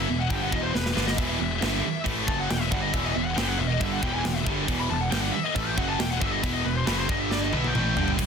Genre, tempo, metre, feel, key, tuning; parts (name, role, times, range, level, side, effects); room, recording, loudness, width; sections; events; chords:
heavy metal; 137 BPM; 4/4; straight; E minor; A4 = 440 Hz
high-gain lead guitar; melody; 0.0-8.1 s; B4 to B5; -30 LUFS; left 3 dB; distortion
distorted electric guitar; riff; 0.0-8.3 s; E2 to B3; -33 LUFS; equal; distortion
heavy high-gain guitar; riff; 0.0-8.3 s; E2 to B3; -32 LUFS; left 13 dB; distortion
high-gain distorted guitar; riff; 0.0-8.2 s; E2 to B3; -31 LUFS; right 11 dB; distortion
fuzz picked electric bass; bass; 0.0-8.3 s; E1 to B1; -30 LUFS; equal; overdrive
tight metal drum kit; drums; 0.3-8.3 s; crash cymbal, kick drum, snare drum, toms; -29 LUFS; equal
light reverb; dense, heavily limited modern master; -23 LUFS; side -6 dB against mid
0.0-8.2 A section
lead electric guitar solo 0.0-8.2; drum fill 0.7-1.2, 7.3-8.2
0.0 Em; 7.1 G5; 7.5 Em